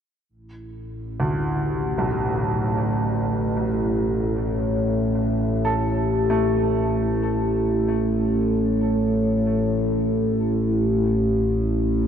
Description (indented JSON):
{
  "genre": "dark ambient drone",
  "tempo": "free time",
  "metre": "none",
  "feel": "none",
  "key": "unclear",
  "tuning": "A4 = 441 Hz",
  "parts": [
    { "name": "overtone-sweeping drone", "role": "drone", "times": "0.6-12.1 s", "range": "A1 to A2", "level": "-21 LUFS", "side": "equal", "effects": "chorus, built-in reverb" },
    { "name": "bright baby grand piano", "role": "arpeggios", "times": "1.2-12.1 s", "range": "B1 to A4", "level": "-28 LUFS", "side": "right 1 dB", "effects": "ping-pong delay" }
  ],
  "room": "wet cathedral reverb, RT60 6.4 s",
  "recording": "dark, warm production",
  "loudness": "-20 LUFS",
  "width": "side -8 dB against mid",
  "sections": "0.3-12.1 A section",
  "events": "none",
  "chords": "0.3 Asus24"
}